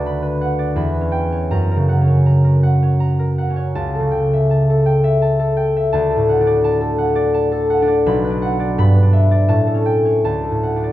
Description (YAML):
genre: classical, solo harp piece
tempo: 77-86 BPM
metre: 3/4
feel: rubato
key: D major from 3.8 s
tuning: A4 = 440 Hz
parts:
  - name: concert harp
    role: solo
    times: 0.0-10.9 s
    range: B1 to B5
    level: -14 LUFS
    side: equal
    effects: none
room: wet recital hall reverb, RT60 1.5 s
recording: close, detailed microphones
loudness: -14 LUFS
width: side -14 dB against mid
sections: 0.0-10.9 A section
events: none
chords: 0.0 Bm/D; 0.8 C#m7b5/E; 1.5 F#; 3.8 A7/C#; 5.9 D; 8.1 Bm; 8.8 Em7/G; 9.5 A7; 10.2 D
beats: 0.06 0.77 | 1.51 2.26 3.00 | 3.76 4.51 5.22 | 5.94 6.65 7.35 | 8.06 8.78 9.49 | 10.24